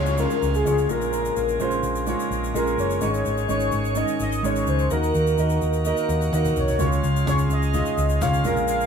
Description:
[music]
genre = piano-driven pop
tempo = 127 BPM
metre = 4/4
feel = straight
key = Db major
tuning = A4 = 442 Hz
[part]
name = warm velvety synth lead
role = melody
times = 0.0-8.9 s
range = Ab4 to F5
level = -26 LUFS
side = left 1 dB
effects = chorus
[part]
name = warm concert grand piano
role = accompaniment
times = 0.0-8.9 s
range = Ab2 to Eb5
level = -25 LUFS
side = right 2 dB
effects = none
[part]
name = bright tonewheel organ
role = sustained chords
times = 0.0-8.9 s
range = Db3 to Gb4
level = -31 LUFS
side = equal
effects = overdrive, slow rotary speaker
[part]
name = picked electric bass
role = bass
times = 0.0-8.8 s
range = Gb1 to Eb2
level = -24 LUFS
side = equal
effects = none
[part]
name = downlifter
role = sound effects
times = 0.0-3.0 s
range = none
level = -37 LUFS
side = right 1 dB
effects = none
[part]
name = egg shaker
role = percussion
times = 0.1-8.9 s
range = none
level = -38 LUFS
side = left 6 dB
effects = none
[part]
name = cajon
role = drums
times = 5.9-8.7 s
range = none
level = -32 LUFS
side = equal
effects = none
[sound]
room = moderate studio reverb, RT60 0.7 s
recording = band playing live in one room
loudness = -20 LUFS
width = side -7 dB against mid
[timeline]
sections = 0.0-8.9 A section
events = drum fill 5.9-6.8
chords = 0.0 Db; 0.9 Bbm7; 3.0 Absus4; 4.9 Ebm; 6.8 Db

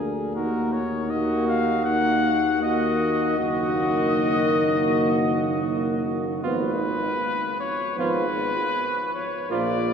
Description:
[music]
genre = classical, brass quintet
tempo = 79 BPM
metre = 4/4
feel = rubato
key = Eb minor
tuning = A4 = 440 Hz
[part]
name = clear flugelhorn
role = second line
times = 0.0-9.8 s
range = F4 to Ab4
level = -29 LUFS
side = right 3 dB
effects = none
[part]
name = mellow French horn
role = accompaniment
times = 0.0-9.8 s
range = Bb3 to Cb4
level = -30 LUFS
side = left 2 dB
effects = none
[part]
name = warm euphonium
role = accompaniment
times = 0.0-9.8 s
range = D3 to F3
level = -28 LUFS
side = equal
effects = none
[part]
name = warm tuba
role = bass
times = 0.0-9.9 s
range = Gb1 to Eb2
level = -27 LUFS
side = right 1 dB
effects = none
[part]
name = warm trumpet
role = melody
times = 0.4-9.9 s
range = Bb4 to Gb5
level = -26 LUFS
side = left 2 dB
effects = none
[sound]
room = wet cathedral reverb, RT60 6.1 s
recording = heard from further back in the room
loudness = -21 LUFS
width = side -7 dB against mid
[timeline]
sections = 0.0-9.9 A section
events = none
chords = 0.4 Ebm; 3.4 Ebm/Gb; 6.4 Fdim/Ab

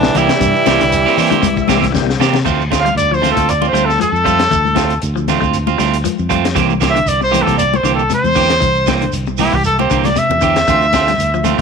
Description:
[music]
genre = afrobeat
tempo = 117 BPM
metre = 4/4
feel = swing 54% on 16ths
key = D minor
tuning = A4 = 441 Hz
[part]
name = raspy tenor saxophone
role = melody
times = 0.0-2.0 s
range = D4 to E4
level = -16 LUFS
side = left 1 dB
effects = none
[part]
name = brilliant trombone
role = second line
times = 0.0-2.0 s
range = E3 to G3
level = -19 LUFS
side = right 15 dB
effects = none
[part]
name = brilliant trombone section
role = second line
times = 0.0-2.0 s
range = D3 to E3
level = -26 LUFS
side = left 13 dB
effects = none
[part]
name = electric guitar at the edge of break-up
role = arpeggios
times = 0.0-11.6 s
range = C3 to A3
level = -23 LUFS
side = left 13 dB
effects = none
[part]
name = fingered electric bass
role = bass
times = 0.0-11.6 s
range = C2 to C3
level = -19 LUFS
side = equal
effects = none
[part]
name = crunchy breakbeat drum kit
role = drums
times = 0.0-11.6 s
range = crash cymbal, hi-hat, kick drum, snare drum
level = -22 LUFS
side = left 4 dB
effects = none
[part]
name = congas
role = percussion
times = 0.1-11.6 s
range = none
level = -22 LUFS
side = left 15 dB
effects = none
[part]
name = shekere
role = percussion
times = 0.1-11.6 s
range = none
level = -28 LUFS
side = right 7 dB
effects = none
[part]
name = percussive tonewheel organ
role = accompaniment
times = 0.2-2.4 s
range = G3 to A5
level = -24 LUFS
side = left 13 dB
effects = chorus vibrato, fast rotary speaker
[part]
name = electric guitar at the edge of break-up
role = stabs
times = 0.2-11.6 s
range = E3 to G4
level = -18 LUFS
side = right 14 dB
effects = none
[part]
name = clear trumpet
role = melody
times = 2.8-11.6 s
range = E4 to F5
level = -15 LUFS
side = equal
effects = none
[sound]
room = light reverb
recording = 1960s-style stereo with parts hard left and right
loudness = -11 LUFS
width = side -5 dB against mid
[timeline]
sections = 0.0-2.5 A section; 2.5-11.6 B section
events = tonewheel organ fill 0.9-2.5; drum fill 1.4-2.5, 10.0-10.7; trumpet solo 2.5-11.6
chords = 0.0 C7; 2.5 Dm7; 6.6 C7; 10.7 Dm7

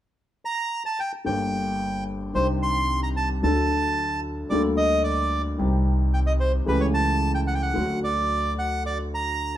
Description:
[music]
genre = tango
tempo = 111 BPM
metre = 4/4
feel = rubato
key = G harmonic minor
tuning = A4 = 440 Hz
[part]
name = bandoneon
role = melody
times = 0.5-9.6 s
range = B4 to C6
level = -25 LUFS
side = right 2 dB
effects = none
[part]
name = warm grand piano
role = accompaniment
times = 1.2-9.6 s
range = G1 to A4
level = -26 LUFS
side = left 2 dB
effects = none
[part]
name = upright bass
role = bass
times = 1.3-9.6 s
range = G1 to D2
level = -26 LUFS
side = equal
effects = none
[sound]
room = moderate stone room reverb, RT60 1.2 s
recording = band playing live in one room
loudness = -22 LUFS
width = side -12 dB against mid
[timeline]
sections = 0.0-1.3 A section; 1.3-9.6 B section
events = none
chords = 0.0 N.C.; 1.3 Gm; 2.4 Cmadd9; 3.4 D; 4.5 Gmadd9/D; 5.6 Cm; 6.7 A7/C#; 7.8 D

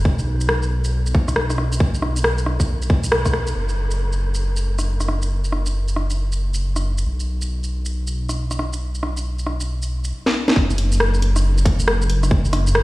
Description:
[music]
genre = future garage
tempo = 137 BPM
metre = 4/4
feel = swing 63% on 16ths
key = unclear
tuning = A4 = 440 Hz
[part]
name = dark detuned saw bass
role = bass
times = 0.0-12.8 s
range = F#1 to B1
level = -20 LUFS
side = equal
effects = sidechain pumping
[part]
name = electronic kick drum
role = drums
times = 0.1-3.3, 10.6-12.4 s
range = none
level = -18 LUFS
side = equal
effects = overdrive, studio reverb
[part]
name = garage drum kit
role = drums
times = 0.2-12.8 s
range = hi-hat, rim click, shaker, snare drum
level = -23 LUFS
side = equal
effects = studio reverb
[sound]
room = light reverb, digital ambience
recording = played on a big sound system in a bare room, stone room reverb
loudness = -18 LUFS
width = side -19 dB against mid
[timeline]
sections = 0.0-3.6 A section; 3.6-10.6 B section; 10.6-12.8 C section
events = band accent 3.1; drum fill 10.2-10.6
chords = none

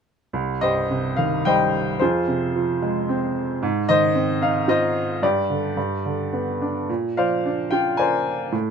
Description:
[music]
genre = classical, lyrical solo piano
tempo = 110 BPM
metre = 3/4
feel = rubato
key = C minor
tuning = A4 = 439 Hz
[part]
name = clear upright piano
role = solo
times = 0.3-8.7 s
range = C2 to Ab5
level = -20 LUFS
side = equal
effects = none
[sound]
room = little or no reverb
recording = close, detailed microphones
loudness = -20 LUFS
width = side -6 dB against mid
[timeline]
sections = 0.3-8.7 A section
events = none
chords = 0.3 Cm; 2.0 Fm; 3.6 Ab6; 5.2 G5; 5.8 G; 6.9 Bbadd9

